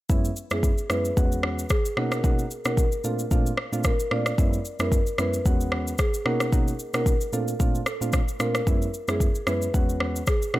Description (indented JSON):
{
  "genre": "afrobeats",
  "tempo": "112 BPM",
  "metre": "4/4",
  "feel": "swing 55% on 16ths",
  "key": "F# mixolydian",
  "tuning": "A4 = 440 Hz",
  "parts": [
    { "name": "soft electric-piano-like synth keys", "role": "accompaniment", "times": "0.1-10.6 s", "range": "E2 to F#4", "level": "-27 LUFS", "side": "right 1 dB", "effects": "chorus" },
    { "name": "afro-pop drum kit", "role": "drums", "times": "0.1-10.6 s", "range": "kick drum, rim click, shaker", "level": "-24 LUFS", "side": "equal", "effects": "none" },
    { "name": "marimba with medium mallets", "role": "melody", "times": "0.5-10.6 s", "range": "G#4 to D5", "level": "-30 LUFS", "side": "equal", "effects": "digital delay" }
  ],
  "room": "digital ambience",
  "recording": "none",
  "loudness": "-22 LUFS",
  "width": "side -17 dB against mid",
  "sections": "0.1-10.6 A section",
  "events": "none",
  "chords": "0.1 F#9sus4; 1.2 E6; 2.0 Bmaj7; 3.0 A#maj9; 4.4 F#9sus4; 5.5 E6; 6.3 Bmaj7; 7.3 A#maj9; 8.7 F#9sus4; 9.7 E6"
}